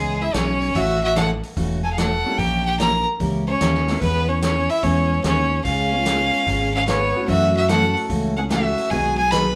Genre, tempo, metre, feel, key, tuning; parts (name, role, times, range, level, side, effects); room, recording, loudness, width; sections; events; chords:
country, western swing; 147 BPM; 4/4; swing 67% on 8ths; E major; A4 = 440 Hz
clear fiddle; melody; 0.0-9.6 s; G#4 to B5; -24 LUFS; equal
clear fiddle; second line; 0.0-9.6 s; G#3 to B4; -29 LUFS; equal
picked steel-string acoustic guitar; accompaniment; 0.0-9.4 s; B2 to A#4; -28 LUFS; equal
mellow fretless electric bass; bass; 0.0-9.6 s; E1 to F#2; -26 LUFS; equal
vintage drum kit; drums; 0.3-9.4 s; hi-hat, kick drum, snare drum; -32 LUFS; equal
clear upright piano; accompaniment; 2.2-9.2 s; G3 to G#4; -31 LUFS; equal
moderate studio reverb, RT60 0.8 s; band playing live in one room; -20 LUFS; mono
0.0-9.6 A section
0.0 E6; 0.8 A6; 2.4 A#dim7; 4.0 E6; 5.7 C#7; 7.3 F#m7; 8.9 B6